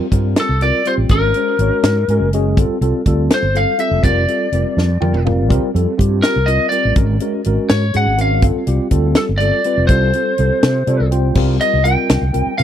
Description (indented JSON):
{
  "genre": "electric jazz fusion",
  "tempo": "82 BPM (dotted quarters)",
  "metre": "6/8",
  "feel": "straight",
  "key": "unclear",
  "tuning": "A4 = 441 Hz",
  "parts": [
    { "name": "tine electric piano", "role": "accompaniment", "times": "0.0-12.6 s", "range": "G3 to Ab5", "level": "-20 LUFS", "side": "equal", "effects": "fast stereo tremolo, wide subtle chorus" },
    { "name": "fretless electric bass", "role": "bass", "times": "0.1-12.6 s", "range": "F1 to C3", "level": "-16 LUFS", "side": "equal", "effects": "none" },
    { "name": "tight funk drum kit", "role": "drums", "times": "0.1-12.6 s", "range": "crash cymbal, hi-hat, kick drum, snare drum, toms", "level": "-17 LUFS", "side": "equal", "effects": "none" },
    { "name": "lightly driven lead guitar", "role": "melody", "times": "0.4-12.6 s", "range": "A4 to G5", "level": "-18 LUFS", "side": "left 2 dB", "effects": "none" }
  ],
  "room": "small room ambience",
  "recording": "dry, close 1970s-style studio recording",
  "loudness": "-13 LUFS",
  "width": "side -10 dB against mid",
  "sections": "0.0-11.4 A section; 11.4-12.6 B section",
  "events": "tine electric piano fill 1.8-2.6, 4.8-5.5, 10.6-11.4; drum fill 4.8-5.5",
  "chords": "0.0 C7sus4; 1.1 Ab9sus4; 2.6 G9sus4; 4.0 Fsus24; 5.5 C7sus4; 7.0 Ab9sus4; 8.4 G9sus4; 9.9 Csus4; 11.4 C5"
}